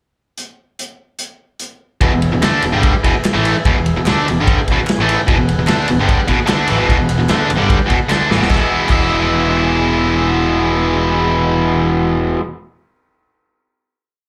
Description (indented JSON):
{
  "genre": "garage rock duo or trio",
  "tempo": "148 BPM",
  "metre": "4/4",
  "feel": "straight",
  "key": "E mixolydian",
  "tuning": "A4 = 439 Hz",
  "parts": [
    { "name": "vintage drum kit", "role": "drums", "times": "0.4-9.0 s", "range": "crash cymbal, hi-hat, kick drum, ride cymbal, snare drum", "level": "-20 LUFS", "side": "equal", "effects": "none" },
    { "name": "overdriven combo organ", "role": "sustained chords", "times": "2.0-11.9 s", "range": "G#4 to B5", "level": "-28 LUFS", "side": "equal", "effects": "none" },
    { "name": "biting overdriven guitar", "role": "riff", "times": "2.0-12.4 s", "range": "E2 to E4", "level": "-17 LUFS", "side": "equal", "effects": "none" },
    { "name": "growling picked electric bass", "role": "bass", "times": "2.0-12.3 s", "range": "E1 to D2", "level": "-22 LUFS", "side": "equal", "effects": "overdrive" },
    { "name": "group handclap", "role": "percussion", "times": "2.4-9.0 s", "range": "none", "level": "-31 LUFS", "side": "equal", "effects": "none" }
  ],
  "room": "light reverb",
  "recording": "live gig heard through the venue's PA, club reverb",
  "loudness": "-15 LUFS",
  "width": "mono",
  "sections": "0.4-2.0 pickup bar; 2.0-8.5 riff; 8.5-11.7 final chord",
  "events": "transistor combo organ fill 4.0-5.3, 7.7-8.5; drum fill 8.1-8.5",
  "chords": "0.4 N.C.; 2.0 E"
}